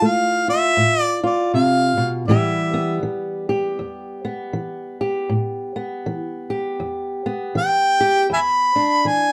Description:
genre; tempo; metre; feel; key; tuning
acoustic country blues, solo or duo; 80 BPM; 4/4; swing 60% on 8ths; unclear; A4 = 442 Hz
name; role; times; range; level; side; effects
warm harmonica; melody; 0.0-3.0, 7.6-9.3 s; D5 to B5; -20 LUFS; equal; none
fingerpicked old ladder-braced acoustic guitar; accompaniment; 0.0-9.3 s; E2 to G4; -23 LUFS; equal; none
room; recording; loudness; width
moderate studio ambience, RT60 0.5 s; dark, warm production; -20 LUFS; mono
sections
0.0-9.3 A section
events
none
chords
0.0 Dm9 (rootless); 2.3 Asus2; 8.3 E7

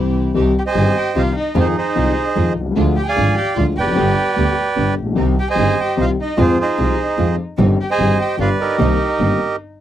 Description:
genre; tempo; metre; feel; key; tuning
tango; 149 BPM; 3/4; rubato; C minor; A4 = 435 Hz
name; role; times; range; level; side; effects
warm violin; second line; 0.0-9.6 s; C4 to C5; -26 LUFS; left 5 dB; none
dark baby grand piano; accompaniment; 0.0-9.4 s; G1 to Ab4; -20 LUFS; left 5 dB; none
rich chamber string section; stabs; 0.0-9.4 s; G3 to G4; -26 LUFS; right 6 dB; none
clear double bass; bass; 0.0-9.4 s; F1 to F2; -19 LUFS; right 2 dB; none
bandoneon; melody; 0.6-9.6 s; Eb4 to Ab5; -18 LUFS; right 5 dB; none
room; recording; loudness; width
light reverb; dry, close 1970s-style studio recording; -14 LUFS; side -11 dB against mid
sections
0.4-9.8 A section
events
stop 9.6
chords
0.4 Cm; 1.6 Fm7; 2.8 Ddim; 4.0 G; 5.2 Cm; 6.4 Fm; 7.6 Cm/G; 8.4 G; 8.8 Cm7

